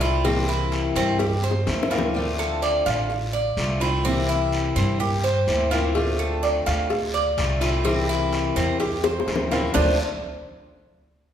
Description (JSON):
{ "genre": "latin, Cuban son and guajira", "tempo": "126 BPM", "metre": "4/4", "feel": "straight", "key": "D minor", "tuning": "A4 = 443 Hz", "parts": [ { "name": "picked steel-string acoustic guitar", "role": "accompaniment", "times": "0.0-9.9 s", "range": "C3 to F4", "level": "-26 LUFS", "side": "left 3 dB", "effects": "none" }, { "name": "Cuban tres", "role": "arpeggios", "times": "0.0-10.0 s", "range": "C4 to D5", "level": "-25 LUFS", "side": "right 2 dB", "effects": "none" }, { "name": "upright bass", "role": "bass", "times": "0.0-10.0 s", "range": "A1 to G2", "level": "-26 LUFS", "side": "equal", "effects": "none" }, { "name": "cowbell and bongos", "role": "percussion", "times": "0.0-2.1, 6.0-9.9 s", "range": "none", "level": "-28 LUFS", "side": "left 2 dB", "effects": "none" }, { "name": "guiro", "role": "percussion", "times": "0.0-9.9 s", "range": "none", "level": "-33 LUFS", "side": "equal", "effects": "none" } ], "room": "wet recital hall reverb, RT60 1.4 s", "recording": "recorded in a church or concert hall", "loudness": "-20 LUFS", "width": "side -9 dB against mid", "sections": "0.0-2.1 A section; 2.1-9.8 B section; 9.8-11.3 C section", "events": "drum fill 1.2-2.1, 9.0-9.8", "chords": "0.2 C7; 2.1 Dm7; 4.0 C7; 6.0 Dm7; 7.9 C7; 9.8 D7(no3)" }